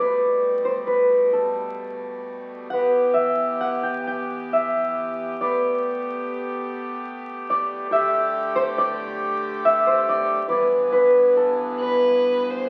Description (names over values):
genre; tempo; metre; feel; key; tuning
celtic folk, Celtic slow air; 43-48 BPM (dotted quarters); 6/8; rubato; unclear; A4 = 441 Hz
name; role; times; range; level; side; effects
concert harp; accompaniment; 0.0-12.7 s; G4 to G5; -22 LUFS; equal; none
accordion; sustained chords; 0.0-12.7 s; G2 to G4; -32 LUFS; equal; none
warm fiddle; melody; 11.8-12.7 s; B4 to C5; -26 LUFS; equal; none
room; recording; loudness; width
wet large studio reverb, RT60 1.4 s; very old 78 rpm record, vinyl crackle; -22 LUFS; mono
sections
0.0-12.7 A section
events
harp solo 0.0-12.7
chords
0.0 Gadd9; 2.7 Em; 5.4 Gadd9; 7.9 Dsus4; 10.5 G6